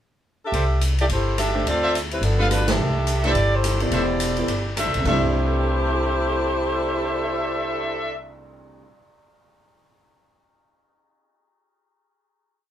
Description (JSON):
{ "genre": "jazz, big band swing", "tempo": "212 BPM", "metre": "4/4", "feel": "swing 60% on 8ths", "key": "C major", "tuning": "A4 = 445 Hz", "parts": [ { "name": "bright saxophone section", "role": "melody", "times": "0.5-8.1 s", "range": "F3 to E5", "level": "-24 LUFS", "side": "equal", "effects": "none" }, { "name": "warm trumpet section", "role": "stabs", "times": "0.5-8.1 s", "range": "D4 to F5", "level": "-27 LUFS", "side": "left 1 dB", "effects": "none" }, { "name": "upright bass", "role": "bass", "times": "0.5-8.8 s", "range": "E1 to D2", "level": "-24 LUFS", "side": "equal", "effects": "none" }, { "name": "swinging big-band drum kit", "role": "drums", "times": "0.5-7.3 s", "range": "crash cymbal, cymbal swell, hi-hat, kick drum, ride cymbal, rim click, snare drum", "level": "-29 LUFS", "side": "equal", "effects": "none" }, { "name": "warm concert grand piano", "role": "accompaniment", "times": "1.5-9.1 s", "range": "B2 to G6", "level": "-29 LUFS", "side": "right 1 dB", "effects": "none" } ], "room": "moderate studio ambience, RT60 0.5 s", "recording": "band playing live in one room", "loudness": "-19 LUFS", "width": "side -10 dB against mid", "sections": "0.0-0.5 pickup bar; 0.5-5.1 A section; 5.1-7.3 final chord", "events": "band accent 2.6", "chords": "0.0 N.C.; 0.5 C69; 1.7 Dm9; 2.2 G9; 2.8 C69", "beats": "0.26 | 0.54 0.82 1.10 1.38 | 1.66 1.94 2.23 2.51 | 2.79 3.07 3.36 3.64 | 3.92 4.21 4.49 4.77 | 5.06 5.34 5.62 5.91 | 6.19 6.48 6.76 7.04" }